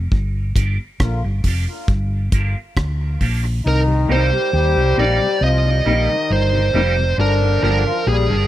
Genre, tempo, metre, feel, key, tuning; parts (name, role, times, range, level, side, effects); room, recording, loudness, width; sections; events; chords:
dub reggae; 68 BPM; 4/4; straight; C minor; A4 = 438 Hz
hollow-body short-scale fingered electric bass; bass; 0.0-8.5 s; F1 to Eb2; -18 LUFS; equal
deep reggae drum kit; drums; 0.1-3.4 s; hi-hat, kick drum, rim click; -20 LUFS; equal
mellow tonewheel organ; accompaniment; 0.3-8.4 s; G2 to F4; -28 LUFS; left 4 dB; chorus vibrato, slow rotary speaker, high-pass filter, dub echo
clean electric guitar; accompaniment; 0.6-7.8 s; F3 to G4; -28 LUFS; right 4 dB; ensemble chorus, high-pass filter, dub echo
bright trombone section; second line; 1.0-8.3 s; D3 to G4; -23 LUFS; left 4 dB; dub echo
high-gain lead guitar; melody; 3.7-8.5 s; Ab4 to Eb5; -19 LUFS; right 3 dB; distortion, dub echo
studio ambience; -15 LUFS; side -13 dB against mid
0.0-3.7 A section; 3.7-8.5 B section
break 0.0-3.7; part muted 3.7-8.5
0.1 Gm7; 3.7 Cm7; 7.2 Gm7